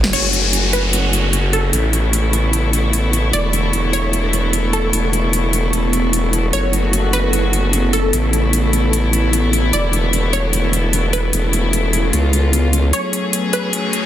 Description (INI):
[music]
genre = heavy wobble dubstep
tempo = 150 BPM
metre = 4/4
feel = swing 53% on 16ths, half-time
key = F# minor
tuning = A4 = 440 Hz
[part]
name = clear studio string section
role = sustained chords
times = 0.0-14.1 s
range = C#3 to B4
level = -22 LUFS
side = left 2 dB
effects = none
[part]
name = formant-sweep wobble bass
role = bass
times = 0.0-12.9 s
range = E1 to C#2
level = -17 LUFS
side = equal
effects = chorus, overdrive
[part]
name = big-room dance drum kit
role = drums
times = 0.0-14.0 s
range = crash cymbal, hi-hat, snare drum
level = -20 LUFS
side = left 1 dB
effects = overdrive, studio reverb
[part]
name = ethereal airy pad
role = texture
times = 0.0-14.1 s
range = F#3 to C#6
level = -23 LUFS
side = equal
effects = ensemble chorus, built-in reverb
[part]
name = wide unison pluck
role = melody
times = 0.1-14.1 s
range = A4 to D5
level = -24 LUFS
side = right 1 dB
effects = phaser, tape echo
[part]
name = downlifter and riser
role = sound effects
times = 0.1-3.3, 13.5-14.1 s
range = none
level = -22 LUFS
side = left 2 dB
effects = none
[sound]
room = light reverb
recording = dense, heavily limited modern master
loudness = -14 LUFS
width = side -11 dB against mid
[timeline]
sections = 0.1-12.9 A section; 12.9-14.1 B section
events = band accent 0.0; build-up 12.9-14.1; riser 13.5-14.1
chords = 0.1 F#madd9; 1.7 Aadd9; 3.3 E7sus4; 4.9 Aadd9/E; 6.5 F#m; 8.1 Aadd9; 9.7 E7sus4; 11.3 Aadd9/E; 12.1 C#7; 12.9 F#madd9